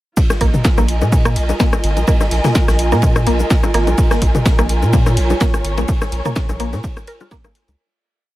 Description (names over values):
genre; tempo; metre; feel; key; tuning
minimal techno; 126 BPM; 4/4; swing 55% on 16ths; Bb minor; A4 = 440 Hz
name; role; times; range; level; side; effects
electronic kick drum; drums; 0.2-7.4 s; none; -16 LUFS; equal; none
punchy analog drum machine; drums; 0.2-7.8 s; hi-hat, shaker, snare drum; -24 LUFS; equal; none
raw garage drum kit; drums; 0.2-7.7 s; ride cymbal, snare drum; -31 LUFS; right 2 dB; sidechain pumping on cymbals, high-pass filter on cymbals, high-pass filter on snare, high-pass filter on room
dark symphonic string section; texture; 0.2-7.8 s; F4 to Ab5; -22 LUFS; right 1 dB; sidechain pumping
garage drum kit; percussion; 0.3-7.8 s; bongos, rim click, toms, woodblock; -22 LUFS; left 2 dB; digital delay
mallet-like synth pluck; riff; 0.4-7.5 s; Bb3 to Bb4; -23 LUFS; equal; chorus, phaser, sidechain pumping, digital delay
round analog bass; bass; 0.4-7.8 s; Ab1 to Bb2; -17 LUFS; equal; sidechain pumping
room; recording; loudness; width
light reverb; none; -13 LUFS; side -16 dB against mid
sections
0.2-7.8 drop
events
drop 0.2-7.8; fade-out 5.2-7.8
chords
0.2 Bbm7